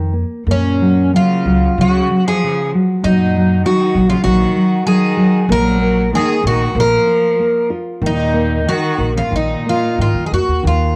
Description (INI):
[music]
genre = fado-style ballad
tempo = 87-100 BPM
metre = 4/4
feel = rubato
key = Eb minor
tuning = A4 = 440 Hz
[part]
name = nylon-string guitar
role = accompaniment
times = 0.0-11.0 s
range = Db3 to F4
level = -19 LUFS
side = equal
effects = cassette tape
[part]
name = upright bass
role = bass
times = 0.0-11.0 s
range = Bb1 to Ab2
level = -21 LUFS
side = equal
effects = none
[part]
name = picked twelve-string acoustic guitar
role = melody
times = 0.5-11.0 s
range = Db4 to Bb4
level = -20 LUFS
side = equal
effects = cassette tape
[part]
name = clear cello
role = second line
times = 0.5-10.3 s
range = Bb2 to Gb3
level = -25 LUFS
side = equal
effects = cassette tape
[sound]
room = moderate spring reverb, RT60 1.4 s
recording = home recording on cassette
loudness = -15 LUFS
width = mono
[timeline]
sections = 0.5-10.6 A section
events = none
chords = 0.5 Gb; 3.0 Ebm; 5.5 Ebmadd11/Bb; 6.8 Bb5; 8.0 Ebm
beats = | 0.46 1.12 1.77 2.40 | 3.03 3.64 4.25 4.86 | 5.49 6.12 6.75 7.39 | 8.02 8.66 9.31 9.98 | 10.64